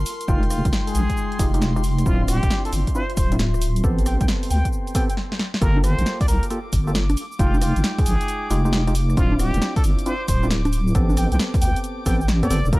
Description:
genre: UK garage, two-step garage.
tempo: 135 BPM.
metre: 4/4.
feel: swing 66% on 16ths.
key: unclear.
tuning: A4 = 440 Hz.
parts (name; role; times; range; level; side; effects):
airy breathy pad; sustained chords; 0.0-12.8 s; G5 to D6; -38 LUFS; left 1 dB; chorus, sidechain pumping.
deep soft wobble bass; bass; 0.0-12.8 s; D1 to E2; -20 LUFS; equal; chorus.
warbly tape-like pad; texture; 0.0-5.2 s; Ab3 to G5; -34 LUFS; left 5 dB; chorus, built-in reverb, sidechain pumping.
punchy analog drum machine; drums; 0.1-12.8 s; congas, hi-hat, rim click, shaker, snare drum; -27 LUFS; equal; none.
trumpet with plunger mute; melody; 0.3-12.8 s; F4 to G5; -30 LUFS; equal; vintage 12-bit sampler grit, digital delay.
percussive organ stab; stabs; 0.3-12.8 s; Ab3 to G5; -28 LUFS; equal; chorus, digital delay.
electronic kick drum; drums; 0.3-12.8 s; none; -22 LUFS; equal; none.
room: little or no reverb.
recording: dark, warm production.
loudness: -18 LUFS.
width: side -20 dB against mid.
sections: 0.0-5.6 A section; 5.6-12.8 B section.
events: drum fill 5.2-5.6; stop 5.2-5.6; drop 5.6-12.8.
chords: 0.1 Fm9; 2.1 Dm9; 3.8 Am9; 5.6 Gm9; 7.2 Fm9; 9.2 Dm9; 10.9 Am9.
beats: | 0.28 0.73 1.17 1.62 | 2.06 2.50 2.95 3.39 | 3.84 4.28 4.73 5.17 | 5.62 6.06 6.50 6.95 | 7.39 7.84 8.28 8.73 | 9.17 9.62 10.06 10.51 | 10.95 11.39 11.84 12.28 | 12.73.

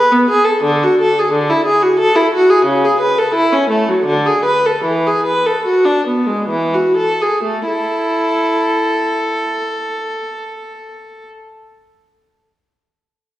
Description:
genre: classical, baroque-style suite movement for unaccompanied viola.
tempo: 60-91 BPM.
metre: 3/4.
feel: rubato.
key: A major.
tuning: A4 = 440 Hz.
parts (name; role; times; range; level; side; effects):
warm viola; solo; 0.0-11.3 s; C#3 to B4; -13 LUFS; equal; none.
room: wet recital hall reverb, RT60 1.7 s.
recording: heard from further back in the room.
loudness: -12 LUFS.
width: side -14 dB against mid.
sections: 0.0-7.5 A section; 7.5-13.0 B section.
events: slowing down 1.7-7.5.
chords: 0.0 B7(no3); 0.6 E7/D; 2.7 A/C#; 4.1 Bm7/D; 4.8 A5/E; 6.5 E; 7.5 A5.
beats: | 0.62 1.32 1.98 | 2.66 3.35 4.06 | 4.84 5.65 6.51 | 7.47 8.40 9.31 | 10.23 11.15.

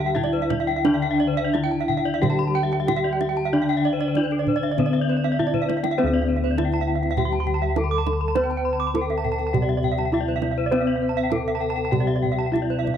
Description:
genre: Balinese gamelan.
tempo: 86-102 BPM.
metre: 4/4.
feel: straight.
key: D slendro.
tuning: A4 = 440 Hz.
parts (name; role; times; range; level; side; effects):
gamelan-type bronze metallophone; melody; 0.0-13.0 s; C4-45c to C5-45c; -26 LUFS; equal; slapback echo.
gamelan-type bronze metallophone; accompaniment; 0.0-13.0 s; D3 to C4-45c; -33 LUFS; left 10 dB; none.
gamelan-type bronze metallophone; arpeggios; 0.0-13.0 s; C5-45c to D6; -29 LUFS; right 11 dB; none.
gamelan-type bossed gongs; bass; 0.0-13.0 s; D2 to C5-45c; -24 LUFS; equal; none.
gamelan-type bronze metallophone; arpeggios; 0.1-12.9 s; A4+25c to C6-45c; -28 LUFS; left 12 dB; none.
kendang; percussion; 0.2-13.0 s; none; -30 LUFS; right 8 dB; none.
room: light reverb, small room ambience.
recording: 1960s-style stereo with parts hard left and right.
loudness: -20 LUFS.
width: side -9 dB against mid.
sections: 0.0-6.0 A section; 6.0-13.0 B section.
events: drum fill 5.4-6.0.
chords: none.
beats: 0.16 | 0.86 1.55 2.22 2.88 | 3.53 4.16 4.78 5.39 | 5.99 6.58 7.17 7.76 | 8.35 8.94 9.54 10.13 | 10.72 11.31 11.92 12.54.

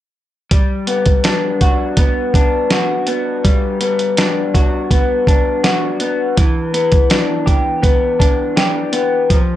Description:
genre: indie pop, bedroom pop.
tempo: 82 BPM.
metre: 4/4.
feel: straight.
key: G major.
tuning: A4 = 440 Hz.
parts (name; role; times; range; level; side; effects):
electric guitar through a small old amp; accompaniment; 0.5-9.6 s; E3 to G4; -16 LUFS; left 2 dB; analog chorus, warbly pitch drift, plate reverb.
dusty soul sampler-style drum kit; drums; 0.5-9.5 s; hi-hat, kick drum, snare drum; -14 LUFS; right 1 dB; vintage 12-bit sampler grit.
room: light reverb.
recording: none.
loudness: -13 LUFS.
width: side -13 dB against mid.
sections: 0.5-9.6 A section.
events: none.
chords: 0.5 Gmaj7; 6.4 Em7.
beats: | 0.52 1.25 1.98 2.71 | 3.44 4.18 4.91 5.64 | 6.37 7.11 7.84 8.57 | 9.30.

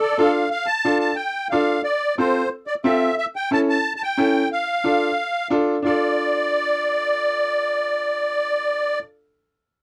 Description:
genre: latin.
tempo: 180 BPM.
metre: 4/4.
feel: straight.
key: D minor.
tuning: A4 = 441 Hz.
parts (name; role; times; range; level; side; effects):
musette accordion; melody; 0.0-9.0 s; A4 to A5; -23 LUFS; equal; none.
bright upright piano; accompaniment; 0.2-9.0 s; C4 to A4; -24 LUFS; equal; none.
room: light reverb.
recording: dry, close 1970s-style studio recording.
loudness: -21 LUFS.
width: mono.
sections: 0.5-5.8 A section; 5.8-8.5 B section.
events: none.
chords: 0.0 Dm; 1.8 F; 3.2 A7; 4.5 Dm.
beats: 0.18 | 0.51 0.84 1.18 1.51 | 1.84 2.17 2.51 2.84 | 3.17 3.51 3.84 4.17 | 4.51 4.84 5.17 5.51 | 5.84 6.18 6.51 6.84 | 7.18 7.51 7.84 8.18.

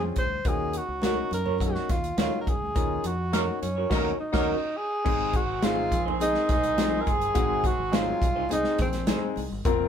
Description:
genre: uptempo 1960s-style soul.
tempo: 104 BPM.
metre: 4/4.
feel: straight.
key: unclear.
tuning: A4 = 439 Hz.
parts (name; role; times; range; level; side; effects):
breathy tenor saxophone; melody; 0.0-9.3 s; C4 to C5; -28 LUFS; right 1 dB; none.
bright concert grand piano; accompaniment; 0.0-9.9 s; Gb3 to Bb4; -31 LUFS; left 6 dB; none.
fingered electric bass; bass; 0.0-9.9 s; F1 to Gb2; -34 LUFS; equal; none.
natural country drum kit; drums; 0.2-9.8 s; crash cymbal, hi-hat, kick drum, snare drum; -28 LUFS; equal; none.
congas; percussion; 0.2-9.8 s; none; -41 LUFS; left 1 dB; none.
electric guitar through a small old amp; stabs; 1.0-9.2 s; C4 to Db5; -32 LUFS; right 6 dB; none.
warm horn section; second line; 3.3-9.3 s; Eb3 to Bb4; -34 LUFS; right 2 dB; none.
room: moderate studio reverb, RT60 0.6 s.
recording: band playing live in one room.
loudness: -24 LUFS.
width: side -8 dB against mid.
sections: 0.0-5.1 A section; 5.1-9.9 B section.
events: band accent 2.8-5.1.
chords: 0.5 Ebm7; 5.1 Ab.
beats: | 0.46 1.03 1.61 2.18 | 2.76 3.33 3.91 4.48 | 5.06 5.63 6.21 6.78 | 7.36 7.93 8.50 9.08 | 9.65.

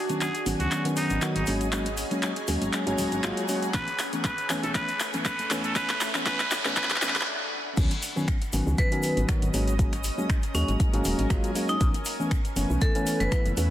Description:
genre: deep house.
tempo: 119 BPM.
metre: 4/4.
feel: swing 54% on 16ths.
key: C# minor.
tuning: A4 = 442 Hz.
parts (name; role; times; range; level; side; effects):
trumpet with straight mute; melody; 0.0-7.3 s; D#4 to B4; -32 LUFS; equal; vintage 12-bit sampler grit, digital delay.
riser; sound effects; 0.0-7.3 s; none; -36 LUFS; right 2 dB; none.
granular cloud pad; texture; 0.0-13.7 s; A3 to B5; -36 LUFS; equal; built-in reverb, sidechain pumping.
string machine, violins; texture; 0.0-7.3 s; G#4 to G#5; -41 LUFS; equal; ensemble chorus, sidechain pumping.
tine electric piano; stabs; 0.1-13.7 s; D#3 to F#4; -29 LUFS; equal; overdrive, vintage 12-bit sampler grit, sidechain pumping, ping-pong delay.
deep house drum kit; drums; 0.1-13.7 s; crash cymbal, finger snaps, handclaps, hi-hat; -31 LUFS; equal; soft clipping on snare.
egg shaker; percussion; 0.1-13.7 s; none; -41 LUFS; left 2 dB; none.
woody FM bass; bass; 0.5-13.7 s; D#1 to E2; -29 LUFS; equal; sidechain pumping.
electronic kick drum; drums; 3.7-13.4 s; none; -25 LUFS; equal; none.
vibraphone with hard mallets; melody; 8.8-13.4 s; C#4 to B4; -31 LUFS; equal; dub echo.
room: light reverb, digital ambience.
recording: dense, heavily limited modern master, vinyl crackle, high-pass filter.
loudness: -24 LUFS.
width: side -12 dB against mid.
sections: 0.0-7.8 A section; 7.8-13.7 B section.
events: build-up 0.0-7.8; drum fill 0.0-7.3; riser 0.0-7.3; filter sweep 0.0-7.8; stop 7.3-7.8; drop 7.8-13.7.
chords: 0.0 C#9sus4; 1.5 G#9sus4; 3.7 B9sus4; 5.8 E9sus4; 7.8 C#9sus4; 9.5 G#9sus4; 11.8 B9sus4.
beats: 0.21 0.71 1.22 | 1.72 2.23 2.73 3.24 | 3.74 4.25 4.75 5.25 | 5.76 6.26 6.77 7.27 | 7.77 8.28 8.78 9.29 | 9.79 10.29 10.80 11.30 | 11.81 12.31 12.82 13.32.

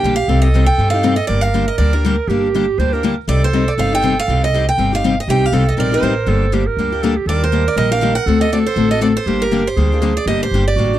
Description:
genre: acoustic string swing (jazz manouche).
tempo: 241 BPM.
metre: 4/4.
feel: swing 57% on 8ths.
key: G minor.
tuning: A4 = 440 Hz.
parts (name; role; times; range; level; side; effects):
picked steel-string acoustic guitar; melody; 0.0-11.0 s; Bb4 to G5; -20 LUFS; right 3 dB; none.
breathy clarinet; second line; 0.0-11.0 s; F#4 to C5; -20 LUFS; right 6 dB; slapback echo.
picked steel-string acoustic guitar; accompaniment; 0.0-11.0 s; C3 to A4; -18 LUFS; left 5 dB; none.
upright bass; bass; 0.0-11.0 s; G1 to G2; -18 LUFS; equal; none.
room: little or no reverb.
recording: dry, close 1970s-style studio recording.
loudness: -13 LUFS.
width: side -12 dB against mid.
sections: 0.0-11.0 A section.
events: none.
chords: 0.3 Cm; 1.3 Gm; 3.3 Cm; 6.3 Gm; 7.3 Ebmaj7; 8.3 D7; 9.3 Gm.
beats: 0.04 | 0.29 0.54 0.79 1.04 | 1.29 1.54 1.78 2.04 | 2.28 2.53 2.78 3.03 | 3.28 3.53 3.78 4.03 | 4.28 4.53 4.78 5.03 | 5.28 5.53 5.78 6.03 | 6.28 6.52 6.77 7.02 | 7.27 7.52 7.77 8.02 | 8.27 8.52 8.77 9.02 | 9.27 9.52 9.77 10.02 | 10.27 10.52 10.76.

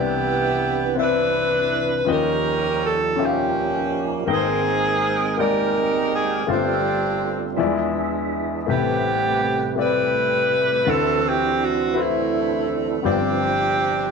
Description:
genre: gospel.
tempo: 55 BPM (dotted quarters).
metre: 6/8.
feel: straight.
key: C major.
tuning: A4 = 440 Hz.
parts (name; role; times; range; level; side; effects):
warm saxophone section; melody; 0.0-14.1 s; A3 to B4; -21 LUFS; right 1 dB; none.
warm grand piano; accompaniment; 0.0-14.1 s; G1 to G5; -24 LUFS; left 9 dB; none.
dark French horn section; sustained chords; 0.0-14.1 s; C3 to E5; -33 LUFS; right 11 dB; none.
percussive tonewheel organ; sustained chords; 0.0-14.1 s; C3 to G5; -28 LUFS; right 11 dB; slow rotary speaker, overdrive, chorus vibrato.
room: moderate echo chamber reverb, RT60 1.4 s, small room reverb.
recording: 1960s-style stereo with parts hard left and right.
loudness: -18 LUFS.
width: side -5 dB against mid.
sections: 0.0-14.1 A section.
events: none.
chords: 0.0 Cmaj9; 2.1 Eb9; 4.3 Abmaj9; 6.5 G9sus4; 7.6 E7b9; 8.7 Am9; 10.9 D13; 13.0 G7sus4.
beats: 0.97 | 2.08 3.18 | 4.28 5.38 | 6.48 7.58 | 8.68 9.77 | 10.86 11.96 | 13.05.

